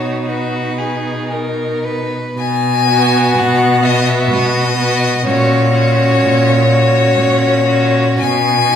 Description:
classical, slow romantic movement for string quartet; 56-64 BPM; 3/4; rubato; B major; A4 = 440 Hz
clear violin; melody; 0.0-8.8 s; B4 to G#5; -15 LUFS; left 4 dB
rich violin; second line; 0.0-8.8 s; F#4 to B4; -20 LUFS; left 1 dB
clear viola; accompaniment; 0.0-8.8 s; B3 to D#4; -20 LUFS; right 2 dB
rich cello; bass; 0.0-8.8 s; A#2 to B2; -16 LUFS; right 1 dB
wet recital hall reverb, RT60 1.3 s; recorded in a church or concert hall; -12 LUFS; side -8 dB against mid
0.0-2.4 A section; 2.4-8.8 B section
0.0 B; 5.3 F#/A#; 8.2 B

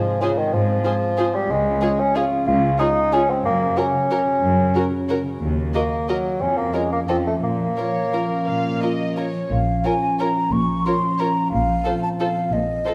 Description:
classical, orchestral ballroom waltz; 164-199 BPM; 3/4; rubato; Bb minor; A4 = 437 Hz
mellow bassoon; accompaniment; 0.0-9.3 s; Db3 to F4; -23 LUFS; equal
concert harp; arpeggios; 0.0-12.9 s; Gb2 to Bb4; -29 LUFS; equal
dark studio violin section; melody; 0.2-12.9 s; Bb4 to F5; -35 LUFS; equal
warm symphonic violin section; second line; 0.2-12.9 s; Ab4 to Bb4; -32 LUFS; equal
dark symphonic viola section; accompaniment; 0.2-12.9 s; F4 to Gb4; -30 LUFS; equal
warm symphonic cello section; bass; 0.5-12.8 s; Db2 to Bb2; -28 LUFS; equal
mellow hollow concert flute; second line; 9.5-12.9 s; Eb5 to Db6; -24 LUFS; equal
warm symphonic double bass section; bass; 9.5-12.8 s; Bb1; -28 LUFS; equal
moderate concert hall reverb, RT60 2.4 s; -21 LUFS; mono
0.0-9.5 A section; 9.5-12.9 B section
0.0 Fm/Ab; 1.5 Db; 3.4 Gb; 5.4 Ebm; 6.4 Bbm/F; 7.1 F; 7.4 Bbm; 11.5 F7/Bb

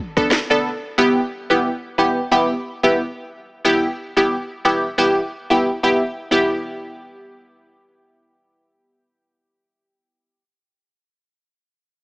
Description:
dancehall; 90 BPM; 4/4; swing 56% on 16ths; E minor; A4 = 440 Hz
punchy chord stab; accompaniment; 0.2-10.4 s; B3 to A4; -16 LUFS; equal; chorus, sidechain pumping
afro-pop drum kit; drums; 0.2-0.5 s; kick drum, rim click, snare drum; -21 LUFS; equal
light reverb, digital ambience; small speaker sound; -16 LUFS; side -29 dB against mid
0.0-6.3 A section; 6.3-9.0 B section
0.0 Bm7; 1.0 Em

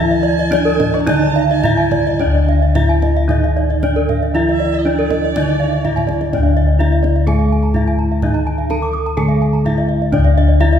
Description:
Balinese gamelan; 107-126 BPM; 4/4; straight; D pelog; A4 = 436 Hz
gamelan-type bronze metallophone; melody; 0.0-10.8 s; D4 to Bb4-40c; -20 LUFS; right 1 dB
rich erhu; second line; 0.0-6.2 s; D5 to D6; -27 LUFS; right 4 dB
gamelan-type bronze metallophone; accompaniment; 0.0-10.8 s; D3 to A3-45c; -23 LUFS; left 1 dB
gamelan-type bronze metallophone; arpeggios; 0.0-10.8 s; D5 to D6; -22 LUFS; left 4 dB
gamelan-type bossed gongs; bass; 0.0-10.8 s; D2 to E4+50c; -16 LUFS; left 1 dB
gamelan-type bronze metallophone; arpeggios; 0.2-10.6 s; Bb4-40c to Eb6; -23 LUFS; right 7 dB
kendang; percussion; 0.4-10.8 s; -25 LUFS; right 2 dB
wet recital hall reverb, RT60 1.7 s; recorded in a church or concert hall; -13 LUFS; side -8 dB against mid
0.0-6.3 A section; 6.3-10.8 B section
drum fill 5.8-6.3

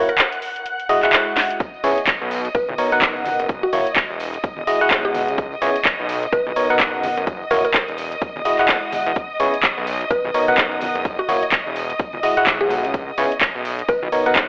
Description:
piano house; 127 BPM; 4/4; swing 59% on 16ths; A4 = 440 Hz
mallet-like synth pluck; melody; 0.0-14.0 s; F#4 to B4; -23 LUFS; equal; chorus, phaser, analog delay
dark symphonic string section; sustained chords; 0.0-14.5 s; D#5 to F#6; -27 LUFS; equal; sidechain pumping
barking FM electric piano; riff; 0.0-14.5 s; B2 to F#5; -19 LUFS; equal; chorus, sidechain pumping
house drum kit; drums; 0.1-14.5 s; handclaps, hi-hat, snare drum; -20 LUFS; equal; overdrive, small room ambience
electronic kick drum; drums; 1.6-14.5 s; -24 LUFS; equal; overdrive, small room ambience
tambourine and congas; percussion; 1.6-14.5 s; -39 LUFS; equal
fat analog bass; bass; 1.8-14.5 s; E1 to E2; -26 LUFS; equal; sidechain pumping
light reverb; dry, gritty hardware recording, cassette tape, telephone sound; -17 LUFS; side -28 dB against mid
0.0-14.5 A section
break 0.0-1.6; drum fill 1.4
0.4 Eadd9; 1.6 C#m7; 2.3 Bmaj7; 3.5 F#7; 4.2 Emaj9; 5.4 C#m7; 6.1 Bmaj7; 7.3 F#7; 8.0 Emaj9; 9.2 C#m7; 9.9 Bmaj7; 11.1 F#7; 11.8 Emaj9; 12.9 C#m7; 13.6 Bmaj9

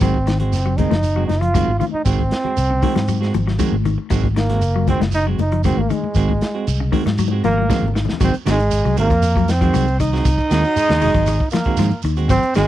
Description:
afrobeat; 117 BPM; 4/4; straight; Ab mixolydian; A4 = 438 Hz
clear trombone; melody; 0.0-12.7 s; Ab3 to F4; -21 LUFS; right 2 dB
clean electric guitar; arpeggios; 0.0-12.7 s; Db3 to Ab3; -25 LUFS; left 7 dB; spring reverb
clean electric guitar; stabs; 0.0-12.7 s; Eb3 to Gb4; -24 LUFS; right 7 dB
fingered electric bass; bass; 0.0-12.7 s; Gb1 to Ab2; -19 LUFS; equal
crunchy breakbeat drum kit; drums; 0.0-12.7 s; hi-hat, kick drum, snare drum; -22 LUFS; equal
shekere; percussion; 0.0-12.7 s; -30 LUFS; right 4 dB
congas; percussion; 0.4-8.2 s; -26 LUFS; left 15 dB
breathy tenor saxophone; second line; 7.4-12.7 s; Ab4 to Eb5; -28 LUFS; right 2 dB
breathy baritone saxophone; second line; 10.5-11.4 s; Eb3 to Ab3; -28 LUFS; left 10 dB
little or no reverb; dry, close 1970s-style studio recording; -15 LUFS; side -13 dB against mid
0.0-8.2 A section; 8.2-12.7 B section
drum fill 7.2-8.2
0.0 Ab7

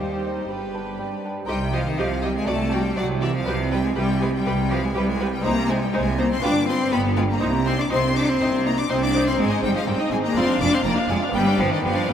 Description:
classical, baroque-style concerto movement with solo episodes; 122 BPM; 4/4; straight; C minor; A4 = 440 Hz
clear cello; melody; 0.0-12.1 s; Eb3 to D4; -23 LUFS; left 2 dB
clear chamber violin section; melody; 0.0-12.1 s; D5 to D6; -30 LUFS; left 5 dB
rich chamber violin section; second line; 0.0-12.1 s; B4 to F5; -30 LUFS; left 2 dB
lute; accompaniment; 0.0-12.1 s; Eb2 to D5; -32 LUFS; right 2 dB
rich chamber viola section; accompaniment; 0.0-12.1 s; B3 to G4; -30 LUFS; right 2 dB
clear chamber double bass section; bass; 0.0-12.1 s; F1 to G2; -29 LUFS; right 4 dB
warm chamber cello section; bass; 0.0-12.1 s; Eb2 to G3; -28 LUFS; right 4 dB
wet cathedral reverb, RT60 6.7 s; in a vast, echoing space; -19 LUFS; side -9 dB against mid
0.0-1.5 A section; 1.5-12.1 B section
0.5 G; 1.5 Cm; 2.5 D7/C; 3.5 G/C; 5.4 Cm; 6.4 G7; 7.4 Cm; 9.4 Ab; 10.4 Ddim/F; 11.3 G

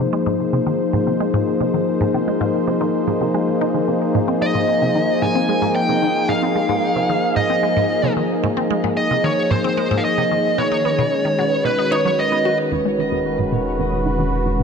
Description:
ambient, sequencer-driven space music; 112 BPM; 4/4; straight; Ab major; A4 = 440 Hz
sweeping resonant pad; sustained chords; 0.0-14.6 s; D#3 to C5; -19 LUFS; left 1 dB; chorus
resonant blip pluck; riff; 0.0-14.6 s; E2 to F#4; -24 LUFS; right 1 dB; phaser, analog delay
smooth overdriven lead guitar; melody; 4.4-12.6 s; B4 to Ab5; -20 LUFS; right 1 dB; analog delay
warm sub bass; bass; 12.7-14.6 s; E1; -26 LUFS; right 1 dB; tube saturation
wet plate reverb, RT60 3.2 s; -16 LUFS; side -6 dB against mid
0.0-12.7 A section; 12.7-14.6 B section
filter sweep on synth arpeggio sound 12.7-14.6
0.0 Ab; 10.6 B; 12.7 E

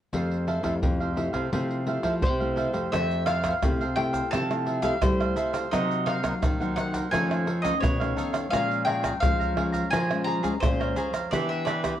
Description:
samba and choro; 86 BPM; 4/4; straight; F major; A4 = 438 Hz
cavaquinho; accompaniment; 0.1-11.9 s; D4 to Bb5; -32 LUFS; right 3 dB
nylon-string guitar; accompaniment; 0.1-12.0 s; F2 to G4; -32 LUFS; left 3 dB
nylon-string guitar; bass; 0.1-11.9 s; F2 to G3; -29 LUFS; equal
surdo, pandeiro, tube shaker and tamborim; percussion; 0.1-12.0 s; -29 LUFS; right 1 dB
bowl-back mandolin; melody; 2.2-12.0 s; C5 to Bb5; -29 LUFS; equal
moderate studio reverb, RT60 0.8 s; worn, warbling old tape, cassette tape, warbly pitch drift; -23 LUFS; side -11 dB against mid
0.1-2.9 A section; 2.9-12.0 B section
0.1 Fmaj9; 5.7 Cm7b5; 7.1 Faug7; 8.5 Bbm7; 11.3 Em7

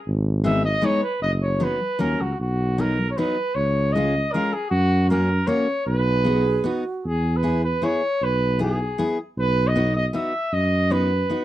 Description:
alpine folk, alpine dance band; 155 BPM; 3/4; rubato; B major, E major from 7.0 s; A4 = 442 Hz
dark tuba; bass; 0.1-11.3 s; F#1 to F#2; -22 LUFS; equal
picked steel-string acoustic guitar; accompaniment; 0.4-11.4 s; F#3 to G#4; -25 LUFS; left 2 dB
clear trumpet; melody; 0.5-11.4 s; F#4 to E5; -24 LUFS; right 1 dB; slapback echo
bright reedy wooden-headed alto flute; second line; 6.2-7.0 s; F#4 to G#4; -25 LUFS; right 5 dB
little or no reverb; dry, close 1970s-style studio recording; -20 LUFS; side -14 dB against mid
0.0-7.0 A section; 7.0-11.4 B section
0.1 G#m; 1.2 B/F#; 2.0 F#; 2.4 B; 3.6 C#; 4.7 F#; 5.9 B; 7.0 E; 9.4 B

